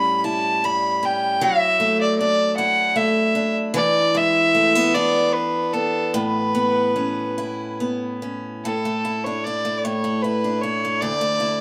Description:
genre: celtic folk, Celtic slow air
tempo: 76 BPM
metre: 3/4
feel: rubato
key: A mixolydian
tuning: A4 = 441 Hz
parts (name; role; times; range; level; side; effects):
- warm fiddle; melody; 0.0-11.6 s; A4 to B5; -22 LUFS; equal; none
- picked steel-string acoustic guitar; accompaniment; 0.0-11.6 s; D2 to E4; -25 LUFS; equal; none
room: wet studio ambience, RT60 0.5 s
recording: band playing live in one room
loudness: -21 LUFS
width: mono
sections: 0.0-8.6 A section; 8.6-11.6 B section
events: none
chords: 0.0 A7; 1.4 Dadd9/F#; 3.8 E7; 6.1 Aadd9; 8.6 Asus4; 11.0 Dsus2

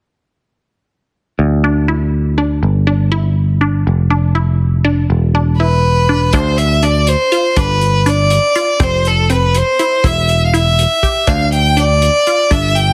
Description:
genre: progressive instrumental, band music in an uneven meter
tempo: 243 BPM (eighths)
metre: 5/8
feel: straight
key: D dorian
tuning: A4 = 440 Hz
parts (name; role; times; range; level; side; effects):
- picked electric bass; bass; 1.4-12.9 s; E1 to D2; -16 LUFS; equal; none
- resonant blip pluck; arpeggios; 1.6-12.9 s; C4 to G4; -22 LUFS; equal; phaser
- clear violin; melody; 5.6-12.9 s; A4 to G5; -16 LUFS; equal; none
- warm soul drum kit; drums; 6.3-12.9 s; hi-hat, kick drum; -21 LUFS; equal; none
room: small room reverb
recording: heavily compressed radio sound, multiband compression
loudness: -13 LUFS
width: mono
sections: 1.4-6.3 A section; 6.3-12.9 B section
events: none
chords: 1.4 Dsus2; 2.6 G5; 3.9 Dmadd9/F; 5.1 E5; 6.3 Dm7; 7.6 G; 8.8 F5; 10.0 Em; 11.3 Dm

